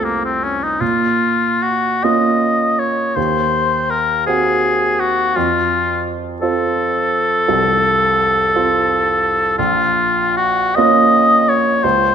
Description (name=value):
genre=classical, romantic duo for oboe and grand piano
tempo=48-59 BPM (dotted quarters)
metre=12/8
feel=rubato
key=Bb minor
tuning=A4 = 440 Hz
part: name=warm oboe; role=melody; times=0.0-12.1 s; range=Bb3 to Eb5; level=-15 LUFS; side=left 2 dB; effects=none
part: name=warm baby grand piano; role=accompaniment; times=0.0-12.1 s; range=Bb1 to Gb4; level=-19 LUFS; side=right 4 dB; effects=none
room=wet recital hall reverb, RT60 1.7 s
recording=none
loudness=-13 LUFS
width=side -8 dB against mid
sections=0.0-12.1 A section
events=none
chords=0.0 F; 0.8 Bbm; 3.2 Cdim/Eb; 5.4 F; 9.6 Bbm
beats=| 0.81 2.03 3.17 4.28 | 5.35 6.41 7.48 8.54 | 9.57 10.75 11.83